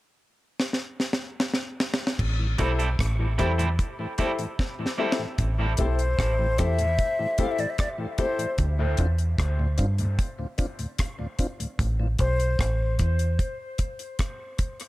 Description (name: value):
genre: dub reggae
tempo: 75 BPM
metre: 4/4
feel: straight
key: A minor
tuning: A4 = 440 Hz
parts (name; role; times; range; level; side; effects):
- deep reggae drum kit; drums; 0.6-14.9 s; crash cymbal, hi-hat, kick drum, rim click, snare drum; -27 LUFS; equal; none
- deep dub fingered electric bass; bass; 2.2-13.4 s; A1 to G2; -24 LUFS; equal; none
- mellow tonewheel organ; accompaniment; 2.4-12.1 s; D2 to G4; -35 LUFS; left 1 dB; slow rotary speaker, dub echo
- electric guitar at the edge of break-up; accompaniment; 2.6-5.1 s; G3 to A4; -33 LUFS; right 3 dB; dub echo
- clear upright piano; stabs; 2.6-8.4 s; E4 to C5; -32 LUFS; left 4 dB; dub echo
- breathy hollow jazz flute; melody; 5.8-13.0 s; C5 to F5; -30 LUFS; left 2 dB; dub echo
room: light reverb, studio reverb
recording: echo-heavy mix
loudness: -23 LUFS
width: side -18 dB against mid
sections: 0.0-2.2 A section; 2.2-5.4 B section; 5.4-14.9 C section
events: drum fill 0.6-2.2, 4.6-5.4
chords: 0.0 N.C.; 2.2 Am7; 8.6 Dm7; 11.8 Am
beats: 0.59 1.39 | 2.19 2.99 3.79 4.59 | 5.39 6.19 6.99 7.79 | 8.59 9.39 10.19 10.99 | 11.79 12.59 13.39 14.19